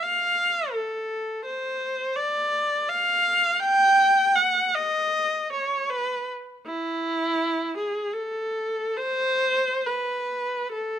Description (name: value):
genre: classical, free, expressive piece for unaccompanied viola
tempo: 62-86 BPM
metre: 3/4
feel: rubato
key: A minor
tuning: A4 = 440 Hz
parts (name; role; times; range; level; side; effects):
- warm viola; solo; 0.0-11.0 s; E4 to G5; -22 LUFS; equal; none
room: light reverb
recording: close, detailed microphones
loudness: -22 LUFS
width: side -9 dB against mid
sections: 0.0-11.0 A section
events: none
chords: none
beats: | 0.03 0.74 1.46 | 2.17 2.89 3.61 | 4.36 5.15 5.91 | 6.66 7.40 8.16 | 8.98 9.86 10.73